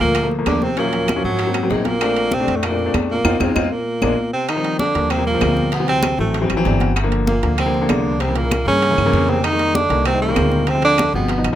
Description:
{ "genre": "Afro-Cuban jazz", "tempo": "194 BPM", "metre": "4/4", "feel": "straight", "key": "Bb major, Eb major from 4.5 s", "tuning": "A4 = 440 Hz", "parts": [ { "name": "clear tenor saxophone", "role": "melody", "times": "0.0-11.6 s", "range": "Gb3 to Eb4", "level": "-20 LUFS", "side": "right 3 dB", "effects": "none" }, { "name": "breathy baritone saxophone", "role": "second line", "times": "0.0-11.6 s", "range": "Gb2 to Eb3", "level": "-25 LUFS", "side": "left 3 dB", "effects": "none" }, { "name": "warm baby grand piano", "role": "accompaniment", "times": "0.0-11.6 s", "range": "Db3 to F#5", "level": "-21 LUFS", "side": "left 2 dB", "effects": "none" }, { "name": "upright bass", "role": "bass", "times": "0.0-11.6 s", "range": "G1 to G2", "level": "-22 LUFS", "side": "equal", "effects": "none" }, { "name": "bongos", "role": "percussion", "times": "0.0-11.6 s", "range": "none", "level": "-32 LUFS", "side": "left 6 dB", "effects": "none" }, { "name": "congas", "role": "percussion", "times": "0.0-11.6 s", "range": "none", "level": "-25 LUFS", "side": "left 1 dB", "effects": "none" }, { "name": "timbales", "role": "percussion", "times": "0.1-11.6 s", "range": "none", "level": "-28 LUFS", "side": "right 9 dB", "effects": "none" }, { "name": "claves", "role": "percussion", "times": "0.2-11.6 s", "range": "none", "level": "-29 LUFS", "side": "left 5 dB", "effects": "none" } ], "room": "light reverb", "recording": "close, detailed microphones", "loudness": "-15 LUFS", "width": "side -12 dB against mid", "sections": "0.0-4.5 A section; 4.5-11.6 B section", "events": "band accent 3.2-4.5; drum fill 3.9-4.5, 9.0-9.4; grand piano fill 6.5-7.0", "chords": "0.0 Gm7 (rootless); 0.8 Ebm7; 1.4 Ab9; 2.0 Bbmaj7; 3.2 Fm7; 3.9 Bb7; 4.5 Eb69; 5.7 D7; 7.0 Gm7; 8.2 C7b9; 9.4 Fm11; 10.7 Dm7b5", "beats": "0.15 0.47 | 0.77 1.08 1.39 1.70 | 2.01 2.32 2.63 2.94 | 3.25 3.56 3.87 4.18 | 4.49 4.80 5.11 5.42 | 5.73 6.04 6.34 6.66 | 6.96 7.27 7.58 7.89 | 8.20 8.51 8.82 9.13 | 9.44 9.75 10.06 10.37 | 10.68 10.98 11.29" }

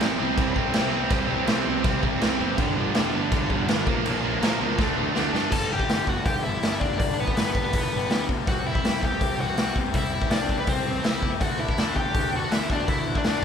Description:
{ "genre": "punk rock", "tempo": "163 BPM", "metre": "4/4", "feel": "straight", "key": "unclear", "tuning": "A4 = 439 Hz", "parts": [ { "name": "cranked stack guitar", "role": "riff", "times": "0.0-5.5 s", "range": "G2 to E4", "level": "-31 LUFS", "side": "right 1 dB", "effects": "overdrive" }, { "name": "distorted electric guitar", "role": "riff", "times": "0.0-5.5 s", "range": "G2 to D4", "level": "-27 LUFS", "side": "right 9 dB", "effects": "distortion" }, { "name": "tight distorted guitar", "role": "riff", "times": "0.0-13.4 s", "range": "G2 to D4", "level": "-30 LUFS", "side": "left 7 dB", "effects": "distortion" }, { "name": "fuzz picked electric bass", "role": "bass", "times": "0.0-13.4 s", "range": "E1 to G2", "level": "-32 LUFS", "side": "equal", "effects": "overdrive" }, { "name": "raw garage drum kit", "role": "drums", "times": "0.0-13.4 s", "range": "crash cymbal, hi-hat, kick drum, snare drum", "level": "-25 LUFS", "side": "equal", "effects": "none" }, { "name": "high-gain lead guitar", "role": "melody", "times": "5.5-13.4 s", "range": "B3 to A5", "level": "-28 LUFS", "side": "left 1 dB", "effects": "distortion" } ], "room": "light reverb", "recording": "band playing live in one room", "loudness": "-22 LUFS", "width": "side -7 dB against mid", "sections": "0.0-5.5 A section; 5.5-13.4 B section", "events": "drum fill 4.8-5.5", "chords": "0.0 C; 2.6 G; 3.9 Bb; 4.8 D; 5.5 G; 8.5 C; 11.4 D", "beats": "0.02 0.38 0.75 | 1.12 1.48 1.85 2.21 | 2.58 2.95 3.31 3.68 | 4.05 4.42 4.78 5.15 | 5.52 5.89 6.26 6.62 | 6.99 7.36 7.73 8.10 | 8.47 8.84 9.21 9.57 | 9.94 10.31 10.68 11.05 | 11.41 11.78 12.14 12.51 | 12.88 13.24" }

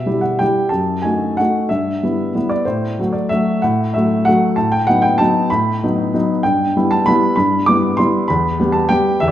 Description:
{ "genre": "classical, piano waltz", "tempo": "175-205 BPM", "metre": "3/4", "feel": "rubato", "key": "E minor", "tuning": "A4 = 440 Hz", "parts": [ { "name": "warm upright piano", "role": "solo", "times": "0.0-9.3 s", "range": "E2 to D6", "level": "-14 LUFS", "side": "equal", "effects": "none" } ], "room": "moderate concert hall reverb, RT60 1.9 s", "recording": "recorded in a church or concert hall", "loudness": "-14 LUFS", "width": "side -11 dB against mid", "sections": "0.0-9.3 A section", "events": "none", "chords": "0.0 Em; 0.7 D#dim/F#; 1.7 Em/G; 2.7 F#dim/A; 4.6 B7/A; 6.5 Em/G; 8.3 Em", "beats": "0.07 0.41 | 0.73 1.05 1.39 | 1.72 2.03 2.36 | 2.67 2.99 3.32 | 3.64 3.95 4.27 | 4.58 4.88 5.21 | 5.53 5.83 6.15 | 6.46 6.77 7.08 | 7.38 7.68 7.98 | 8.29 8.60 8.90 | 9.21" }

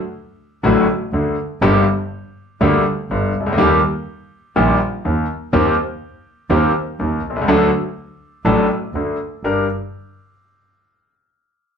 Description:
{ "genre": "tango", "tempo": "123 BPM", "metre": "4/4", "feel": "rubato", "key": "G harmonic minor", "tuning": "A4 = 440 Hz", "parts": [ { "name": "bright concert grand piano", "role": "accompaniment", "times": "0.6-9.6 s", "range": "G1 to Bb4", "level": "-16 LUFS", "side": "left 1 dB", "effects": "none" }, { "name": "clear double bass", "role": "bass", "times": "0.6-9.6 s", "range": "G1 to Eb2", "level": "-22 LUFS", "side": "right 2 dB", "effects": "none" } ], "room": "wet club reverb, RT60 0.7 s", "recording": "heard from further back in the room", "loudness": "-15 LUFS", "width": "side -7 dB against mid", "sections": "0.0-9.4 A section; 9.4-11.4 B section", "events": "none", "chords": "0.0 D; 1.6 Gm; 3.6 Eb; 5.5 Cm7/Eb; 7.5 D; 8.9 N.C.; 9.4 Gm", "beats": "0.15 0.64 1.13 | 1.62 2.12 2.61 3.10 | 3.58 4.07 4.56 5.04 | 5.53 6.01 6.50 6.98 | 7.47 7.96 8.45 8.94 | 9.44" }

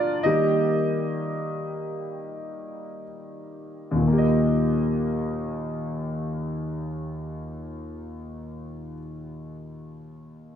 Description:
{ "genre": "pop", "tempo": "free time", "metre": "none", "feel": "none", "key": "Eb major", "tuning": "A4 = 441 Hz", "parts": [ { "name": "clear concert grand piano", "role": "accompaniment", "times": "0.0-10.5 s", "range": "Eb2 to Eb5", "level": "-25 LUFS", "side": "equal", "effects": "analog chorus" } ], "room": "wet plate reverb, RT60 2.4 s", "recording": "dreamy mix soaked in reverb", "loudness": "-23 LUFS", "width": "side -9 dB against mid", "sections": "0.0-4.0 A section; 4.0-8.0 B section", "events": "slowing down 0.0-4.0; grand piano solo 0.0-4.0", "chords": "0.2 Eb", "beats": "free time" }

